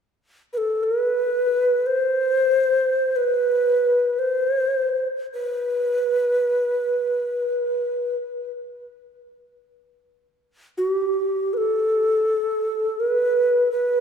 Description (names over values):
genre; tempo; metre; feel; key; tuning
world meditative, free-time meditation music; free time; none; none; unclear; A4 = 438 Hz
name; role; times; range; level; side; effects
mellow hollow Native American-style cedar flute; solo; 0.5-14.0 s; G4 to C5; -19 LUFS; equal; ping-pong delay
room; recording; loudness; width
wet church reverb, RT60 3.1 s; none; -19 LUFS; side -7 dB against mid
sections
0.0-14.0 A section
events
none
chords
none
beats
free time